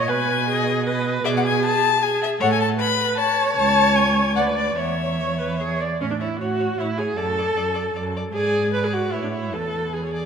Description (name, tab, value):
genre	quick classical-period movement for string quartet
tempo	143-157 BPM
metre	3/4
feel	rubato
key	A major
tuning	A4 = 441 Hz
part	rich violin	melody	0.0-10.3 s	C#5 to B5	-24 LUFS	left 9 dB	none
part	warm violin	second line	0.0-10.3 s	G#4 to D#5	-32 LUFS	left 3 dB	none
part	rich viola	accompaniment	0.0-10.3 s	C#4 to D5	-23 LUFS	right 2 dB	none
part	rich cello	bass	0.0-10.3 s	C#2 to B2	-25 LUFS	right 4 dB	none
room	wet concert hall reverb, RT60 2.5 s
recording	none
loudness	-19 LUFS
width	side -7 dB against mid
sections	0.0-6.0 A section; 6.0-10.3 B section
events	none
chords	0.1 G#m/B; 2.4 A; 3.6 A/C#; 4.4 Bm/D; 4.8 C#m7/E; 5.6 E; 6.0 A; 7.2 D/F#; 8.3 G#m7b5; 9.1 A; 9.5 E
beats	| 0.08 0.47 0.86 | 1.25 1.63 2.02 | 2.40 2.79 3.17 | 3.56 3.96 4.36 | 4.77 5.19 5.60 | 6.00 6.40 6.79 | 7.17 7.56 7.95 | 8.34 8.73 9.12 | 9.53 9.93